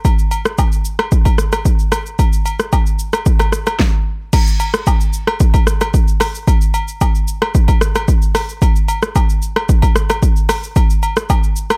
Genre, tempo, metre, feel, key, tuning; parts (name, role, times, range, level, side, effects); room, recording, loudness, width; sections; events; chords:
amapiano; 112 BPM; 4/4; straight
deep house drum kit; drums; 0.0-11.8 s; crash cymbal, hi-hat, kick drum, rim click, shaker, snare drum; -15 LUFS; equal
agogo bells and woodblock; percussion; 0.1-11.8 s; -25 LUFS; equal
digital ambience; echo-heavy mix; -15 LUFS; mono
0.0-4.3 A section; 4.3-11.8 B section
stop 3.8-4.3; drop 4.3-11.8